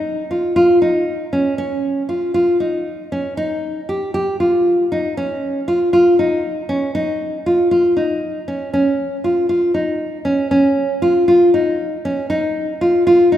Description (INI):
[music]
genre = contemporary instrumental, contemporary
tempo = 235 BPM (eighths)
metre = 7/8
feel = straight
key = unclear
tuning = A4 = 440 Hz
[part]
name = nylon-string guitar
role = solo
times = 0.0-13.4 s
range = Db4 to G4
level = -15 LUFS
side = equal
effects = none
[sound]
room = wet concert hall reverb, RT60 2.1 s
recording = recorded in a church or concert hall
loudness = -15 LUFS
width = side -11 dB against mid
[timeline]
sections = 0.0-8.7 A section; 8.7-13.4 B section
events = none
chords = none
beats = 0.06 0.31 0.57 0.82 1.08 1.33 | 1.59 1.84 2.10 2.36 2.61 2.87 3.12 | 3.38 3.63 3.89 4.14 4.40 4.65 4.91 | 5.16 5.42 5.67 5.93 6.18 6.44 6.69 | 6.95 7.20 7.46 7.71 7.97 8.22 8.48 | 8.73 8.99 9.24 9.50 9.75 10.01 10.26 | 10.52 10.77 11.03 11.28 11.54 11.79 12.05 | 12.30 12.56 12.81 13.06 13.32